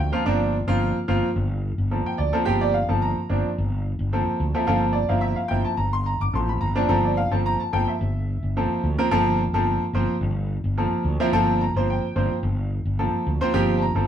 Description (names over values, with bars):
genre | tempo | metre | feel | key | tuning
electric jazz fusion | 108 BPM | 4/4 | straight | G dorian | A4 = 439 Hz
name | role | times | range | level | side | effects
bright baby grand piano | accompaniment | 0.0-14.1 s | F3 to D6 | -22 LUFS | right 1 dB | none
fretless electric bass | bass | 0.0-14.1 s | G1 to D2 | -24 LUFS | equal | none
room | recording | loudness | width
wet studio reverb, RT60 0.8 s | band playing live in one room | -20 LUFS | side -9 dB against mid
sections
0.0-14.1 A section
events
none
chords
0.0 Gm11